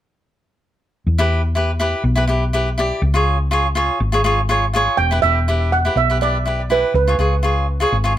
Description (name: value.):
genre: calypso.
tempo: 122 BPM.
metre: 4/4.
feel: straight.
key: unclear.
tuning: A4 = 441 Hz.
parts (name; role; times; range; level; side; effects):
hollow-body short-scale fingered electric bass; bass; 1.1-8.2 s; E1 to E2; -18 LUFS; equal; none.
cavaquinho; accompaniment; 1.2-8.1 s; E4 to D5; -19 LUFS; equal; none.
steel pan; melody; 5.0-7.6 s; B4 to G5; -19 LUFS; right 6 dB; digital delay.
room: light reverb.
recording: none.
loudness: -15 LUFS.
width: side -12 dB against mid.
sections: 1.1-5.0 A section; 5.0-8.2 B section.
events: cavaquinho fill 7.9.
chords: 1.1 Em; 3.0 C#; 5.0 Em7; 6.9 C#7.